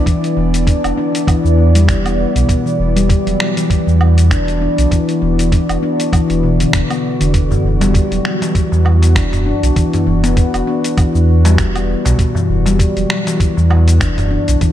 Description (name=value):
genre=organic downtempo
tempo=99 BPM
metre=4/4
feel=swing 56% on 16ths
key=unclear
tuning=A4 = 440 Hz
part: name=warbly tape-like pad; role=sustained chords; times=0.0-14.7 s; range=E3 to D5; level=-22 LUFS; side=right 2 dB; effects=chorus, built-in reverb, sidechain pumping, shimmer reverb
part: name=handpan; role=arpeggios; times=0.1-14.7 s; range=B2 to D4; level=-16 LUFS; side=left 3 dB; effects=digital delay, shimmer reverb
part: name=dusty soul sampler-style drum kit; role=drums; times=0.1-14.7 s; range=finger snaps, hi-hat, shaker, woodblock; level=-23 LUFS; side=equal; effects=none
part: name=electronic kick drum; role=drums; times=0.1-14.7 s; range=none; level=-14 LUFS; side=equal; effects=none
part: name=warm sub bass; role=bass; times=0.4-14.6 s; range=E1 to E2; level=-13 LUFS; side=equal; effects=sidechain pumping
part: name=darbuka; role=percussion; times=7.5-14.3 s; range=none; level=-22 LUFS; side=equal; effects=none
room=light reverb, digital ambience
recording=dark, warm production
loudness=-11 LUFS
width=side -12 dB against mid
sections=0.0-14.7 A section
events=none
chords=0.0 E7(no3)